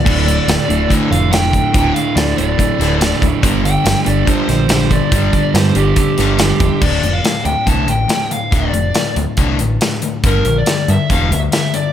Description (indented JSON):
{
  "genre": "classic rock",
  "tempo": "142 BPM",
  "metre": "4/4",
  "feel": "straight",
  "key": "D minor",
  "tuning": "A4 = 440 Hz",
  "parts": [
    { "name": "fuzz lead guitar", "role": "melody", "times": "0.0-11.9 s", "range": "G4 to A5", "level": "-20 LUFS", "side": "equal", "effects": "distortion" },
    { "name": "overdriven semi-hollow guitar", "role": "riff", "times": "0.0-11.9 s", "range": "D2 to G3", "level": "-19 LUFS", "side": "left 6 dB", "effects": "spring reverb" },
    { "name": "overdriven semi-hollow guitar", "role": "riff", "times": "0.0-6.8 s", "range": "D2 to G3", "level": "-18 LUFS", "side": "right 9 dB", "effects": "none" },
    { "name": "overdriven picked electric bass", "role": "bass", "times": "0.1-11.5 s", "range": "D1 to G2", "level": "-17 LUFS", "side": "right 1 dB", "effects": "none" },
    { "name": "big rock drum kit", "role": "drums", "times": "0.1-11.8 s", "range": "crash cymbal, hi-hat, kick drum, snare drum, tambourine", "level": "-17 LUFS", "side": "equal", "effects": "none" }
  ],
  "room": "light reverb",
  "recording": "none",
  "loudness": "-12 LUFS",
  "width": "side -10 dB against mid",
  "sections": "0.0-6.8 A section; 6.8-11.9 B section",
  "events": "lead electric guitar solo 0.0-6.8",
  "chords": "0.1 Dm; 3.4 Gm; 6.8 D5; 10.2 G5",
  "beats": "| 0.06 0.48 0.90 1.32 | 1.74 2.16 2.59 3.01 | 3.43 3.85 4.27 4.70 | 5.12 5.54 5.97 6.39 | 6.82 7.24 7.67 8.10 | 8.52 8.95 9.38 9.81 | 10.24 10.66 11.10 11.53"
}